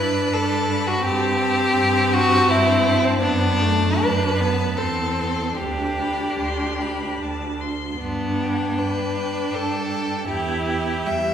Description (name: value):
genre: classical, slow romantic movement for string quartet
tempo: 72-85 BPM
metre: 3/4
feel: rubato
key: G major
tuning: A4 = 440 Hz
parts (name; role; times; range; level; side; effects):
- rich violin; melody; 0.0-11.3 s; G5 to C6; -31 LUFS; left 5 dB; none
- clear violin; second line; 0.0-11.3 s; C4 to E5; -22 LUFS; left 1 dB; none
- rich viola; accompaniment; 0.0-11.3 s; G3 to E4; -25 LUFS; right 1 dB; none
- rich cello; bass; 0.0-11.3 s; D2 to G2; -25 LUFS; right 1 dB; none
room: wet concert hall reverb, RT60 1.7 s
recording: recorded in a church or concert hall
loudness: -19 LUFS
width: side -8 dB against mid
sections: 0.0-11.3 A section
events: none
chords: 0.0 G; 1.1 Am7/G; 3.2 D/F#; 4.8 C/E; 5.6 G/D; 8.0 G; 10.3 Em